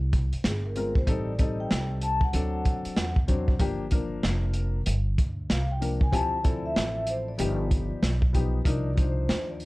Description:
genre	hip hop, jazz-hop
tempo	95 BPM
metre	4/4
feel	swing 62% on 16ths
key	unclear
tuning	A4 = 440 Hz
part	upright bass	bass	0.0-9.7 s	F1 to E2	-29 LUFS	equal	none
part	crunchy breakbeat drum kit	drums	0.1-9.7 s	hi-hat, kick drum, snare drum	-26 LUFS	equal	none
part	vibraphone with soft mallets	melody	0.5-9.7 s	Ab4 to A5	-33 LUFS	left 1 dB	tape echo
part	dark concert grand piano	accompaniment	0.8-9.7 s	F3 to C5	-32 LUFS	left 3 dB	none
room	little or no reverb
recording	dark, warm production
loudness	-24 LUFS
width	side -21 dB against mid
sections	0.0-9.7 A section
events	vibraphone solo 0.0-9.7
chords	0.0 Ab69; 1.1 Am7b5; 2.3 D7; 3.6 Gm7; 6.1 Dm11; 7.4 G7b13; 8.7 Cm11

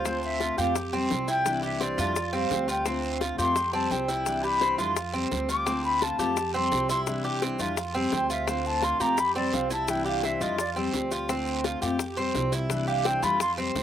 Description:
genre	latin, Cuban son and guajira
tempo	171 BPM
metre	4/4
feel	straight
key	unclear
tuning	A4 = 440 Hz
part	mellow concert flute	melody	0.0-10.7, 12.9-13.5 s	C5 to D6	-27 LUFS	equal	slapback echo
part	fingerpicked steel-string acoustic guitar	accompaniment	0.0-13.8 s	C3 to G4	-32 LUFS	left 5 dB	none
part	Cuban tres	arpeggios	0.0-13.8 s	C4 to G4	-30 LUFS	right 3 dB	slapback echo
part	upright bass	bass	0.0-13.8 s	C2 to F2	-35 LUFS	equal	none
part	bongos	percussion	0.1-13.8 s	none	-33 LUFS	left 8 dB	slapback echo
part	guiro	percussion	0.1-13.8 s	none	-38 LUFS	right 6 dB	none
part	maracas	percussion	0.1-13.8 s	none	-40 LUFS	left 6 dB	none
room	little or no reverb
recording	recorded outdoors, with no room sound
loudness	-24 LUFS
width	side -10 dB against mid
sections	0.0-13.8 A section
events	flute solo 0.0-13.8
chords	0.1 Dm7; 0.8 Fsus2; 1.5 Cadd9; 2.2 Fsus2; 2.9 Dm7; 3.6 Fsus2; 4.3 Cadd9; 5.0 Fsus2; 5.7 Dm7; 6.4 Fsus2; 7.1 Cadd9; 7.8 Fsus2; 8.5 Dm7; 9.2 Fsus2; 9.9 Cadd9; 10.6 Fsus2; 11.3 Dm7; 12.0 Fsus2; 12.7 Cadd9

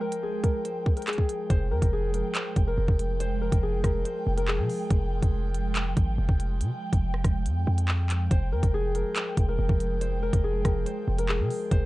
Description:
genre	hip hop, drill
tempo	141 BPM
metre	4/4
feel	half-time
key	F minor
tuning	A4 = 441 Hz
part	Celtic harp	melody	0.0-11.9 s	Ab4 to C5	-31 LUFS	left 2 dB	low-pass filter, plate reverb
part	clear concert grand piano	accompaniment	0.0-1.5 s	Ab3 to Ab4	-55 LUFS	left 3 dB	none
part	airy breathy pad	sustained chords	0.0-11.9 s	F3 to G5	-35 LUFS	right 3 dB	chorus, phaser, low-pass filter
part	drill drum kit	drums	0.1-11.8 s	handclaps, hi-hat, kick drum, rim click	-26 LUFS	equal	none
part	hard-hitting 808-style bass	bass	1.5-11.9 s	F1 to C3	-27 LUFS	equal	none
room	light reverb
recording	dark, warm production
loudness	-24 LUFS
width	side -18 dB against mid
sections	0.0-1.5 A section; 1.5-11.9 B section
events	none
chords	0.0 Fmadd9

